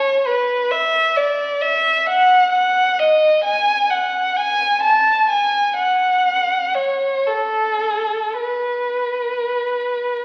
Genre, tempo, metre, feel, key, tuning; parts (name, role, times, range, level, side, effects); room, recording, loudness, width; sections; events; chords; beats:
classical, free, expressive piece for unaccompanied violin; 33-44 BPM (dotted quarters); 6/8; rubato; A4 = 437 Hz
dark violin; solo; 0.0-10.2 s; A4 to A5; -18 LUFS; equal
wet recital hall reverb, RT60 1.4 s; very old 78 rpm record, vinyl crackle; -18 LUFS; mono
0.0-10.2 A section
1.17 | 2.53 3.90 | 5.29 6.74 | 8.41 10.13